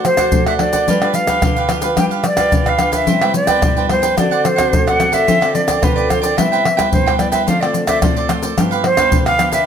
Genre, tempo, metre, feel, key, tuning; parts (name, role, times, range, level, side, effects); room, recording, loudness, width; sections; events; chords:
samba and choro; 109 BPM; 4/4; straight; A4 = 442 Hz
cavaquinho; accompaniment; 0.0-9.7 s; D4 to G5; -21 LUFS; right 8 dB
nylon-string guitar; accompaniment; 0.0-9.6 s; G2 to C5; -21 LUFS; left 2 dB
egg shaker, pandeiro, tamborim and surdo; percussion; 0.0-9.7 s; -17 LUFS; left 1 dB
jazz flute; melody; 0.1-9.7 s; B4 to G5; -17 LUFS; equal; plate reverb
moderate studio reverb, RT60 0.7 s; -12 LUFS; side -8 dB against mid
0.0-9.7 A section
0.0 D7/A; 0.9 G7; 3.1 Cmaj7; 4.2 D7; 5.3 G9sus4/D; 6.4 Cmaj7; 7.5 Dm7; 8.6 G7